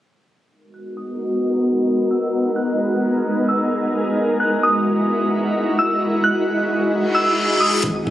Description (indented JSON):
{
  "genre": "hip hop, atmospheric cloud-rap",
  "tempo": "131 BPM",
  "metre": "4/4",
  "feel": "half-time",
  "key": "G# minor",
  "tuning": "A4 = 440 Hz",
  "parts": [
    { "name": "shimmering ambient pad", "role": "sustained chords", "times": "0.8-8.1 s", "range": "G#3 to A#4", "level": "-18 LUFS", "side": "equal", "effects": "chorus, built-in reverb, sidechain pumping, low-pass filter" },
    { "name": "glassy synth bell", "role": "melody", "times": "0.7-7.8 s", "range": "D#6 to F#6", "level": "-22 LUFS", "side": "equal", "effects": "chorus, low-pass filter, digital delay" },
    { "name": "reverse cymbal and impact", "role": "sound effects", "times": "7.1-8.1 s", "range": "none", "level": "-22 LUFS", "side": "left 1 dB", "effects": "none" },
    { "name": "long sustained 808-style bass", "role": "bass", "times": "7.8-8.1 s", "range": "G#1", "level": "-24 LUFS", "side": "equal", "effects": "none" },
    { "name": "electronic kick drum", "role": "drums", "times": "7.8-8.1 s", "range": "none", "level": "-27 LUFS", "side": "equal", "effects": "none" }
  ],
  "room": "light reverb, digital ambience",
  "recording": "recorded on a phone in the room, studio ambience, compression",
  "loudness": "-16 LUFS",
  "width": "side -13 dB against mid",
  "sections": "0.5-7.8 A section",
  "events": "filter sweep 0.5-7.8; reverse cymbal 7.1-7.8; impact 7.8",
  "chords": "0.5 G#m9; 4.2 Emaj9#11"
}